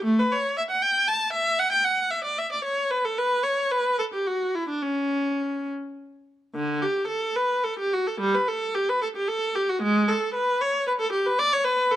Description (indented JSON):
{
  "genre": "classical, baroque-style suite movement for unaccompanied viola",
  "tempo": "69-79 BPM (dotted quarters)",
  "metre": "6/8",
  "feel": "rubato",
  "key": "unclear",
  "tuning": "A4 = 442 Hz",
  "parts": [
    { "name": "rich viola", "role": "solo", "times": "0.0-12.0 s", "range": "D3 to A5", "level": "-22 LUFS", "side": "equal", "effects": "none" }
  ],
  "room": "light reverb",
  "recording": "dark, warm production",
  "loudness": "-22 LUFS",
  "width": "side -12 dB against mid",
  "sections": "0.0-6.5 A section; 6.5-12.0 B section",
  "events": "none",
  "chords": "none"
}